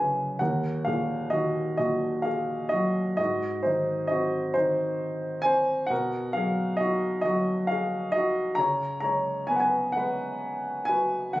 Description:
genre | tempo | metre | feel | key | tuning
classical, lyrical solo piano | 44 BPM (dotted quarters) | 6/8 | rubato | Eb minor | A4 = 442 Hz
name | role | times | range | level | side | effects
warm upright piano | solo | 0.0-11.4 s | Eb2 to Bb5 | -24 LUFS | equal | none
room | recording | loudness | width
light reverb | recorded on a phone in the room, club reverb, compression | -24 LUFS | side -16 dB against mid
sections
0.4-11.4 A section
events
none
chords
0.4 Ebm; 3.2 Ab7; 5.9 Bmaj7; 8.6 Db7sus4

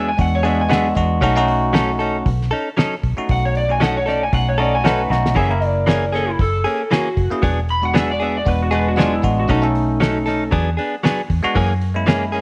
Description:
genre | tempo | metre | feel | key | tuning
straight-eighth soul blues | 116 BPM | 4/4 | swing 55% on 16ths | B mixolydian | A4 = 439 Hz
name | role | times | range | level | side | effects
electric slide guitar | second line | 0.0-10.5 s | D#4 to B5 | -25 LUFS | equal | none
bell-like tine electric piano | accompaniment | 0.0-12.4 s | C#3 to A#4 | -23 LUFS | equal | phaser
direct-recorded clean electric guitar | stabs | 0.0-12.4 s | E3 to A4 | -24 LUFS | equal | none
vintage muted fingered electric bass | bass | 0.0-12.4 s | E1 to F#2 | -24 LUFS | equal | none
cloth-damped thuddy drum kit | drums | 0.2-12.4 s | hi-hat, kick drum, snare drum | -22 LUFS | equal | none
room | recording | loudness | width
light reverb | none | -18 LUFS | mono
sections
0.0-12.4 A section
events
electric slide guitar solo 0.0-12.4; drum fill 5.1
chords
0.0 E9; 1.2 B9; 5.4 F#9; 7.4 E9; 9.5 B9; 10.5 E9; 11.6 F#9

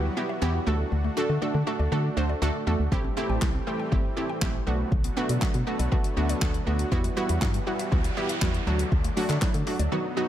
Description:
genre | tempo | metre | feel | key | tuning
dance-pop | 120 BPM | 4/4 | straight | unclear | A4 = 440 Hz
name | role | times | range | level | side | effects
wide unison pluck | accompaniment | 0.0-10.3 s | F#3 to C5 | -29 LUFS | right 2 dB | sidechain pumping
supersaw pad | sustained chords | 0.0-10.3 s | D3 to G4 | -34 LUFS | equal | sidechain pumping
organ-like FM bass | bass | 0.0-9.9 s | G1 to D3 | -27 LUFS | equal | sidechain pumping
mallet-like synth pluck | arpeggios | 0.3-10.0 s | D3 to G5 | -38 LUFS | left 5 dB | chorus, sidechain pumping, digital delay
deep house drum kit | drums | 2.9-9.9 s | handclaps, hi-hat, kick drum, snare drum | -27 LUFS | equal | overdrive
noise sweep | sound effects | 7.5-9.9 s | none | -38 LUFS | right 1 dB | none
room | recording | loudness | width
light reverb, digital ambience | none | -24 LUFS | side -11 dB against mid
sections
0.0-10.3 A section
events
noise sweep 7.5-10.3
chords
0.0 Emadd9; 0.7 D; 2.9 Am7; 4.7 Bm7; 6.9 Emadd9; 8.7 D

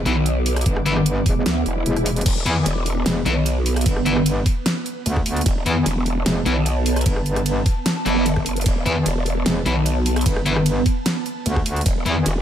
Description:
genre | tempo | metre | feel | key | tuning
heavy wobble dubstep | 150 BPM | 4/4 | half-time | E minor | A4 = 440 Hz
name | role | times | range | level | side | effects
metallic wobble bass | bass | 0.0-12.2 s | E1 to E2 | -21 LUFS | equal | chorus, overdrive
ethereal airy pad | texture | 0.0-12.4 s | B3 to D6 | -26 LUFS | right 3 dB | ensemble chorus, built-in reverb, phaser, sidechain pumping
thick fuzz guitar | stabs | 0.1-12.1 s | E3 to E4 | -25 LUFS | left 3 dB | distortion, dub echo
growl bass | bass | 0.1-12.4 s | E1 to D2 | -21 LUFS | equal | chorus, overdrive
dubstep drum kit | drums | 0.1-12.3 s | crash cymbal, hi-hat, ride cymbal, rim click, snare drum | -26 LUFS | equal | none
electronic kick drum | drums | 0.7-11.9 s | none | -20 LUFS | equal | none
swell | sound effects | 1.7-2.3 s | none | -29 LUFS | left 4 dB | none
room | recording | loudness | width
digital ambience | none | -18 LUFS | side -10 dB against mid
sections
0.0-12.4 A section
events
swell 1.7-2.3; kick drops out 1.9-2.3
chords
0.0 E5

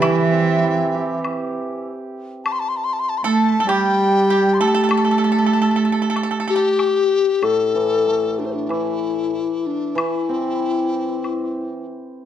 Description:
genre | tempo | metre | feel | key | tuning
chinese traditional, Chinese chamber ensemble | 96 BPM | 4/4 | straight | A yu mode | A4 = 440 Hz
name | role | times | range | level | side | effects
mellow hollow large dizi | melody | 0.0-11.9 s | D4 to C6 | -20 LUFS | left 5 dB | none
pipa | second line | 0.0-6.6 s | E4 to A4 | -24 LUFS | right 4 dB | none
warm cello | second line | 0.0-6.8 s | E3 to A3 | -19 LUFS | right 4 dB | none
hammered dulcimer | accompaniment | 0.0-11.8 s | A2 to G4 | -23 LUFS | right 1 dB | none
woodblock | percussion | 0.0-11.4 s | none | -27 LUFS | left 3 dB | none
room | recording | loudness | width
moderate recital hall reverb, RT60 1.5 s | dark, warm production | -17 LUFS | side -10 dB against mid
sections
0.0-7.4 A section; 7.4-12.3 B section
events
none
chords
none

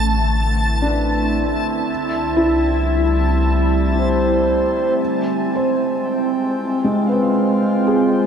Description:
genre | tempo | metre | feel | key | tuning
ambient | 58 BPM | 3/4 | straight | unclear | A4 = 440 Hz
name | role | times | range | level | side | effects
evolving wavetable pad | sustained chords | 0.0-8.3 s | G3 to G5 | -19 LUFS | right 1 dB | chorus, built-in reverb
round analog bass | bass | 0.0-4.9 s | A1 to C2 | -20 LUFS | equal | tube saturation
organ-like drone | drone | 0.0-5.1 s | D3 to A3 | -33 LUFS | left 1 dB | ensemble chorus, built-in reverb
backwards swelling texture | texture | 0.0-5.0 s | A5 | -27 LUFS | equal | built-in reverb
felt-muted upright piano | arpeggios | 0.8-8.3 s | Ab3 to C5 | -22 LUFS | left 1 dB | diffuse ambient delay
breathy flute-like synth lead | melody | 4.0-8.3 s | C5 to Ab5 | -23 LUFS | equal | chorus, diffuse ambient delay
room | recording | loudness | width
wet huge ambient reverb, RT60 7.5 s | none | -16 LUFS | side -7 dB against mid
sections
0.0-5.0 A section; 5.0-8.3 B section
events
none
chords
0.0 Amadd9; 1.9 C; 5.0 Fmadd9

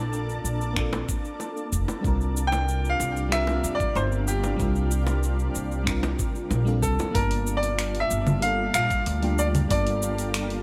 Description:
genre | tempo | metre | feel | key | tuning
sunset chillout | 94 BPM | 4/4 | straight | G minor | A4 = 443 Hz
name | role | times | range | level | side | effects
bright baby grand piano | melody | 0.0-10.6 s | G4 to A5 | -30 LUFS | equal | digital delay
mellow FM electric piano | accompaniment | 0.0-10.6 s | G3 to A5 | -34 LUFS | equal | chorus, phaser, tape echo
shimmering ambient pad | sustained chords | 0.0-10.6 s | C3 to A5 | -36 LUFS | equal | chorus, built-in reverb
upright bass | bass | 0.0-10.6 s | F1 to F2 | -29 LUFS | equal | none
deep house drum kit | drums | 0.1-10.6 s | cabasa, congas, finger snaps, hi-hat | -33 LUFS | equal | none
electronic kick drum | drums | 0.8-9.8 s | none | -31 LUFS | equal | none
bongos | percussion | 0.9-7.1 s | none | -38 LUFS | equal | none
room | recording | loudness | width
light reverb | none | -25 LUFS | mono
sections
0.0-7.2 A section; 7.2-10.6 B section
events
filter sweep on FM electric piano 0.0-7.2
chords
0.0 Bbmaj9; 2.0 C9sus4; 7.2 Gm9

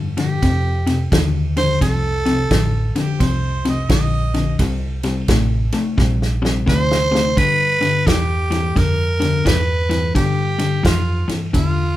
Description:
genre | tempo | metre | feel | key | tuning
electric blues shuffle | 86 BPM | 4/4 | swing 64% on 8ths | C mixolydian | A4 = 440 Hz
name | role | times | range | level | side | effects
overdriven electric guitar | riff | 0.0-11.9 s | F2 to A3 | -20 LUFS | left 3 dB | none
vintage muted fingered electric bass | bass | 0.0-12.0 s | A1 to G2 | -21 LUFS | right 1 dB | none
growling tenor saxophone | melody | 0.2-12.0 s | F4 to C5 | -20 LUFS | right 2 dB | none
natural country drum kit | drums | 0.2-11.7 s | kick drum, ride cymbal, snare drum | -21 LUFS | right 1 dB | none
bright harmonica | second line | 3.0-4.6 s | G4 to Eb5 | -27 LUFS | right 5 dB | overdrive
room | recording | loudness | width
light reverb | band playing live in one room | -15 LUFS | side -14 dB against mid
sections
0.0-12.0 A section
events
drum fill 6.0-7.4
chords
0.0 F13; 4.6 Csus2; 7.4 G6

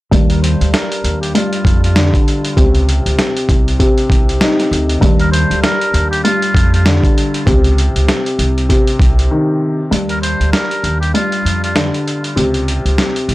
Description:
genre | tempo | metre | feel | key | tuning
hip hop, boom-bap hip-hop | 98 BPM | 4/4 | swing 59% on 16ths | Eb major | A4 = 440 Hz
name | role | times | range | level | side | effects
dark upright piano | accompaniment | 0.1-13.3 s | G2 to Eb4 | -17 LUFS | left 1 dB | cassette tape, high-pass filter, low-pass filter
upright bass | bass | 0.1-13.3 s | C2 to F2 | -15 LUFS | equal | tube saturation
boom bap sampler-style drum kit | drums | 0.1-13.3 s | hi-hat, kick drum, snare drum | -15 LUFS | equal | none
trumpet with metal mute | melody | 0.3-11.7 s | F4 to C5 | -21 LUFS | equal | high-pass filter, low-pass filter, tape echo
room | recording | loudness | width
little or no reverb | dry, gritty hardware recording | -11 LUFS | side -18 dB against mid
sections
0.1-9.9 A section; 9.9-13.3 B section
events
break 9.3-9.9, 9.9-13.3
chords
0.1 Ebmaj9; 2.6 Dbsus2; 5.0 Ebmaj9; 7.5 Dbsus2; 9.9 Ebmaj9; 12.4 N.C.

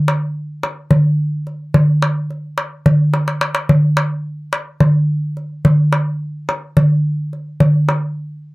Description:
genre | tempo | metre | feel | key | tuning
turkish | 216 BPM (eighths) | 7/8 | straight | none | none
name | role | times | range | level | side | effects
darbuka | percussion | 0.1-8.0 s | none | -14 LUFS | equal | none
room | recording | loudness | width
light reverb | dry, close 1970s-style studio recording | -14 LUFS | side -22 dB against mid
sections
0.0-3.7 A section; 3.7-8.5 B section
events
drum fill 3.1-3.7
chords
none

